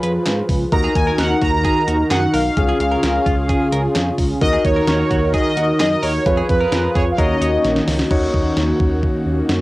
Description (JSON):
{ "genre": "synth-pop", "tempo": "130 BPM", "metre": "4/4", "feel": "straight", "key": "Eb minor", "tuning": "A4 = 440 Hz", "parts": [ { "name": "direct-recorded clean electric guitar", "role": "second line", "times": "0.0-7.5 s", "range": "F4 to Db5", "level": "-28 LUFS", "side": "right 2 dB", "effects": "analog delay" }, { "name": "warm concert grand piano", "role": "accompaniment", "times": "0.0-9.6 s", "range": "Db4 to Db5", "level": "-23 LUFS", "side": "left 2 dB", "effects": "plate reverb" }, { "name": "brassy analog pad", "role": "sustained chords", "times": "0.0-9.6 s", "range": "Db3 to Cb5", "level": "-21 LUFS", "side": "equal", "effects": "chorus" }, { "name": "smooth synth bass", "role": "bass", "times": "0.0-9.6 s", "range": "Bb1 to Ab2", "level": "-22 LUFS", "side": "equal", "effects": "none" }, { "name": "clean 12-bit digital drum machine", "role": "drums", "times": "0.0-9.6 s", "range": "crash cymbal, handclaps, hi-hat, kick drum, snare drum", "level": "-21 LUFS", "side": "equal", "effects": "none" }, { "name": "analog synth brass", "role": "melody", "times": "0.7-7.8 s", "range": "Cb5 to Bb5", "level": "-21 LUFS", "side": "equal", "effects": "chorus, analog delay" } ], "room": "moderate booth ambience, RT60 0.2 s", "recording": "home recording on cassette", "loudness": "-15 LUFS", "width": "side -18 dB against mid", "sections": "0.0-8.1 A section; 8.1-9.6 B section", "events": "drum fill 7.6-8.1", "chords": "0.0 Fdim; 0.7 Ebm; 2.6 Db; 4.4 Ebm; 6.3 Fdim; 7.2 Ebm7" }